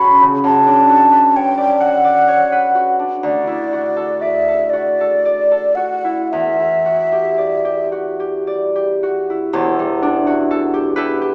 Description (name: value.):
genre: classical, impressionist duo for flute and harp.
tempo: 36-45 BPM (dotted quarters).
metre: 6/8.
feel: rubato.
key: E dorian.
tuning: A4 = 440 Hz.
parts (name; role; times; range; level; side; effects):
mellow hollow concert flute; melody; 0.0-7.9 s; D5 to B5; -16 LUFS; equal; none.
concert harp; accompaniment; 0.0-11.3 s; E1 to F#5; -20 LUFS; equal; none.
room: wet recital hall reverb, RT60 1.8 s.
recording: recorded in a church or concert hall, small speaker sound.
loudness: -15 LUFS.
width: mono.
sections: 0.0-9.5 A section; 9.5-11.3 B section.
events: none.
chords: 0.5 Bm9/F#; 3.2 Dadd9; 6.3 Em9; 9.5 Em11.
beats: | 0.45 1.82 | 3.24 4.73 | 6.31 7.92 | 9.53 10.96.